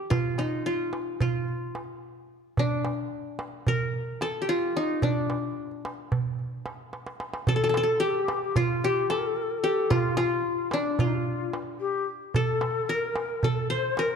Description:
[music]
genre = Turkish makam ensemble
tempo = 221 BPM (eighths)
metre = 9/8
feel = straight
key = D makam kurdi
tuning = A4 = 440 Hz
[part]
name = qanun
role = melody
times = 0.0-14.2 s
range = D4 to C5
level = -28 LUFS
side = left 1 dB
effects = none
[part]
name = darbuka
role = percussion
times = 0.1-14.1 s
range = none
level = -29 LUFS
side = right 4 dB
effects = none
[part]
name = breathy ney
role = second line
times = 7.5-14.2 s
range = D4 to C5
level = -29 LUFS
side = left 5 dB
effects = none
[sound]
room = wet scoring stage reverb, RT60 1.6 s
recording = dark, warm production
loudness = -25 LUFS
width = side -6 dB against mid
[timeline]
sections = 0.0-7.5 A section; 7.5-14.2 B section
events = drum fill 6.9-7.5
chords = none

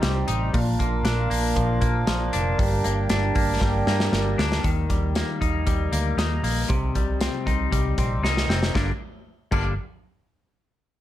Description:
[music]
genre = jangly indie pop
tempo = 117 BPM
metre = 4/4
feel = straight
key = G minor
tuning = A4 = 440 Hz
[part]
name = hand-pumped harmonium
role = sustained chords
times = 0.0-4.6 s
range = D4 to G5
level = -28 LUFS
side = right 4 dB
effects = none
[part]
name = clean electric guitar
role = arpeggios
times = 0.0-9.7 s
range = G2 to Eb4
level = -26 LUFS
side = left 3 dB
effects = wide subtle chorus, slapback echo
[part]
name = vintage muted fingered electric bass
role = bass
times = 0.0-9.8 s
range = F1 to Bb2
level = -26 LUFS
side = equal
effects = none
[part]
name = modern studio drum kit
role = drums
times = 0.0-9.6 s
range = crash cymbal, hi-hat, kick drum, snare drum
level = -26 LUFS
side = equal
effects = none
[sound]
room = light reverb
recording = none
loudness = -21 LUFS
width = side -13 dB against mid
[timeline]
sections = 0.0-4.6 A section; 4.6-8.8 B section; 8.8-10.8 C section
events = drum fill 3.6-4.6, 8.2-8.8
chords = 0.0 Cm; 0.5 Bb; 2.6 Gm; 4.6 Eb; 6.7 Cm; 8.8 Gm

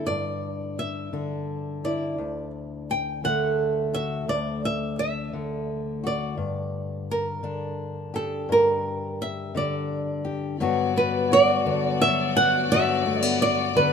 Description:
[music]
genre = acoustic folk-pop ballad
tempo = 57 BPM (dotted quarters)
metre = 6/8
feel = straight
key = unclear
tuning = A4 = 440 Hz
[part]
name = flamenco guitar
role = melody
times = 0.0-13.9 s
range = A4 to G5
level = -24 LUFS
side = right 2 dB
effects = none
[part]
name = fingerpicked steel-string acoustic guitar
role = accompaniment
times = 0.0-13.9 s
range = D2 to G4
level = -27 LUFS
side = left 3 dB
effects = none
[part]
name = warm chamber string section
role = sustained chords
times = 10.6-13.9 s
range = G2 to D5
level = -30 LUFS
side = left 2 dB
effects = none
[sound]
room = light reverb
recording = minimal, uncompressed stereo recording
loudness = -23 LUFS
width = side -7 dB against mid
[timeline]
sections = 0.0-10.6 A section; 10.6-13.9 B section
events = none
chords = 0.0 G5; 2.2 D; 6.4 Gm; 10.6 Gmaj7

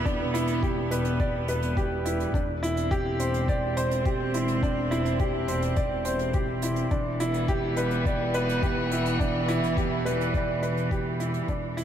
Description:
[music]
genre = piano and strings electronica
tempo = 105 BPM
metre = 4/4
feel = straight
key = E minor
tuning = A4 = 438 Hz
[part]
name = rich string quartet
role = sustained chords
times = 0.0-11.8 s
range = E3 to C4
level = -31 LUFS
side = right 1 dB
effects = sidechain pumping
[part]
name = clear upright piano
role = riff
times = 0.0-11.8 s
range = D4 to D5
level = -28 LUFS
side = equal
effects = ping-pong delay
[part]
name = warm chamber double bass section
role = bass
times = 0.0-11.8 s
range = E1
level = -30 LUFS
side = equal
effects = sidechain pumping
[part]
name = electronic kick drum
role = drums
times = 0.1-11.6 s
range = none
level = -28 LUFS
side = left 1 dB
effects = overdrive
[part]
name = hi-hat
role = drums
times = 0.1-11.8 s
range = none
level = -42 LUFS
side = right 6 dB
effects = none
[sound]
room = moderate lush hall reverb, RT60 2.4 s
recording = dreamy mix soaked in reverb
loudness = -24 LUFS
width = side -9 dB against mid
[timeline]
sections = 0.0-11.8 A section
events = fade-out 10.0-11.8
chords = 0.0 Em7; 2.3 Cadd9/E; 6.9 Em7

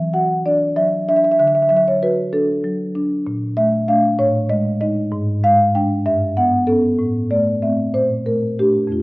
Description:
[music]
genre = classical, contemporary piece for solo marimba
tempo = 64 BPM (dotted quarters)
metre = 6/8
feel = rubato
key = unclear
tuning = A4 = 439 Hz
[part]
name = marimba with soft mallets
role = solo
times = 0.0-9.0 s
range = F2 to G5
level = -15 LUFS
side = equal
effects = none
[sound]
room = moderate recital hall reverb, RT60 1.4 s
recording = worn, warbling old tape, cassette tape, warbly pitch drift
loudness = -15 LUFS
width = side -23 dB against mid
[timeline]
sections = 0.0-9.0 A section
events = none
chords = 0.0 Esus2; 1.4 D; 3.3 Bbmaj7; 4.2 Amaj7#11; 5.1 Fm69/Ab; 6.1 G; 7.0 Am; 7.9 Bbmaj7

